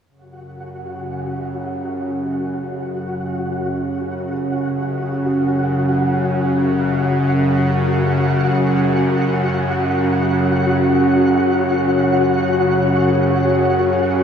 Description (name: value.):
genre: dark ambient drone.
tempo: free time.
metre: none.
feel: none.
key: unclear.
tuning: A4 = 439 Hz.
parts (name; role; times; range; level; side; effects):
bowed-like drone; drone; 0.6-14.2 s; F#2 to C#3; -18 LUFS; equal; built-in reverb.
flickering grainy texture; texture; 0.4-14.2 s; F#4 to F#5; -22 LUFS; left 1 dB; built-in reverb.
deep dark ambient pad; sustained chords; 10.4-14.2 s; F#4 to F#5; -21 LUFS; left 2 dB; chorus, built-in reverb.
room: wet huge ambient reverb, RT60 8.5 s.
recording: studio ambience.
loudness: -16 LUFS.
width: side -8 dB against mid.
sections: 0.1-14.2 A section.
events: none.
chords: 0.1 F#5.